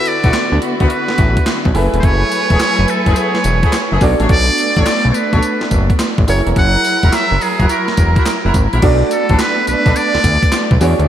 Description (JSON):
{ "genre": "R&B, new jack swing", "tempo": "106 BPM", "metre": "4/4", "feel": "swing 66% on 16ths", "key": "B dorian", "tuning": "A4 = 444 Hz", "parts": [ { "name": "trumpet with metal mute", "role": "melody", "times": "0.0-10.8 s", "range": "G#4 to F#5", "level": "-18 LUFS", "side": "equal", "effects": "none" }, { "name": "warm baby grand piano", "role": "accompaniment", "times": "0.0-11.1 s", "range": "D4 to D5", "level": "-21 LUFS", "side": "right 2 dB", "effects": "none" }, { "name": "warm studio string section", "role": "sustained chords", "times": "0.0-11.1 s", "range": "D3 to G#5", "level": "-20 LUFS", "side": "right 1 dB", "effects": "none" }, { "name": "gated 80s digital drum machine", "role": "drums", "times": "0.1-11.1 s", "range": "crash cymbal, handclaps, hi-hat, kick drum, snare drum, tambourine", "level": "-17 LUFS", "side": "equal", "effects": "gated reverb, gated reverb snare" }, { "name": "clear horn section", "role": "stabs", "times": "0.2-10.0 s", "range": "A3 to C#5", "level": "-24 LUFS", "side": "left 1 dB", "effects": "diffuse ambient delay" }, { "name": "fat analog bass", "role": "bass", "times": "0.2-11.1 s", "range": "E1 to E2", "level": "-15 LUFS", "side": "equal", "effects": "none" } ], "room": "moderate church reverb, RT60 2.8 s", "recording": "dreamy mix soaked in reverb", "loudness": "-11 LUFS", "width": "side -10 dB against mid", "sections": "0.0-8.8 A section; 8.8-11.1 B section", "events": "none", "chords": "0.0 D69; 1.7 F#m11; 4.0 Bm9; 6.3 F#7; 8.8 Bm7", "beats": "0.33 0.90 1.47 | 2.03 2.60 3.17 3.73 | 4.30 4.86 5.43 6.00 | 6.56 7.13 7.69 8.26 | 8.82 9.39 9.96 10.52" }